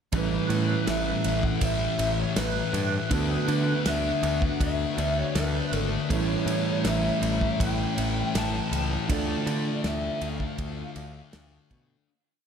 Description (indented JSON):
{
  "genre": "rock, shoegaze and dream pop",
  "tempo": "80 BPM",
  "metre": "4/4",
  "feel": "straight",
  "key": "A mixolydian",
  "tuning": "A4 = 440 Hz",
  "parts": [
    { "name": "mellow electric guitar", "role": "riff", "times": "0.1-12.1 s", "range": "A2 to B4", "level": "-30 LUFS", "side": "right 7 dB", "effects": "reverse reverb" },
    { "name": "thick fuzz guitar", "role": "riff", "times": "0.1-12.1 s", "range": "A2 to D4", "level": "-30 LUFS", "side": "left 8 dB", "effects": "distortion, lush chorus" },
    { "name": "modern bright picked electric bass", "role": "bass", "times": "0.1-11.9 s", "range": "G#1 to D3", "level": "-30 LUFS", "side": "equal", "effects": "none" },
    { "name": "loose indie drum kit", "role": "drums", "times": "0.1-11.9 s", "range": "kick drum, ride cymbal, snare drum", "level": "-32 LUFS", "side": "right 1 dB", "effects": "none" },
    { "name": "lead guitar through a small cranked amp", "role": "melody", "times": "0.2-11.7 s", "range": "B4 to A5", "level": "-31 LUFS", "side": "equal", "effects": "overdrive, wide subtle chorus, tape echo" }
  ],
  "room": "wet huge ambient reverb, RT60 7.8 s",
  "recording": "dreamy mix soaked in reverb",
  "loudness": "-24 LUFS",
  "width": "side -7 dB against mid",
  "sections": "0.1-12.1 verse",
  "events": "fade-out 9.1-12.1",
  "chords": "0.1 A9; 3.1 D6; 6.1 A9; 9.1 Dm"
}